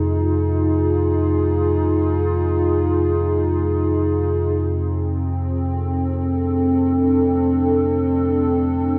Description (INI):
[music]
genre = dark ambient drone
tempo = free time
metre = none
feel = none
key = unclear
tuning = A4 = 444 Hz
[part]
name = dark analog pad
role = sustained chords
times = 0.0-9.0 s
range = C4 to A4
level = -21 LUFS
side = equal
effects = chorus
[part]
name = deep rumbling drone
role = drone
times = 0.0-9.0 s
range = F2 to C3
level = -24 LUFS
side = equal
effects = built-in reverb
[sound]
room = wet huge ambient reverb, RT60 8.5 s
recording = worn, warbling old tape, cassette tape, warbly pitch drift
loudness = -19 LUFS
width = mono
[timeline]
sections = 0.0-9.0 A section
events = filter sweep on synth drone 0.0-9.0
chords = 0.0 Fm; 4.5 Am